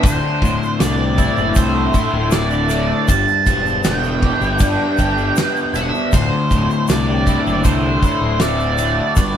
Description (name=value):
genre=psychedelic rock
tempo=79 BPM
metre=4/4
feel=straight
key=unclear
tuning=A4 = 438 Hz
part: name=octave-fuzz lead guitar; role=melody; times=0.0-9.4 s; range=C5 to A5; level=-21 LUFS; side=right 4 dB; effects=wah, distortion
part: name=crunchy overdriven guitar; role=riff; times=0.0-9.4 s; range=D2 to G4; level=-19 LUFS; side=left 2 dB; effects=rotary speaker
part: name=fuzz picked electric bass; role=bass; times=0.0-9.3 s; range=D1 to C2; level=-21 LUFS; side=equal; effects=overdrive
part: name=tanpura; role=drone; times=0.0-9.4 s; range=D2 to D3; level=-29 LUFS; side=left 1 dB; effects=none
part: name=damped 70s drum kit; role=drums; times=0.0-9.3 s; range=kick drum, ride cymbal, snare drum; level=-20 LUFS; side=equal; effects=none
part: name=tube shaker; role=percussion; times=0.1-9.3 s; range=none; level=-34 LUFS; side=left 6 dB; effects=none
room=moderate stone room reverb, RT60 1.0 s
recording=band playing live in one room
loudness=-14 LUFS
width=side -9 dB against mid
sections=0.0-9.4 A section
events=none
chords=0.0 Dsus2; 3.1 G; 6.1 Dsus2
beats=| 0.04 0.80 1.56 2.33 | 3.09 3.85 4.61 5.37 | 6.13 6.89 7.65 8.41 | 9.17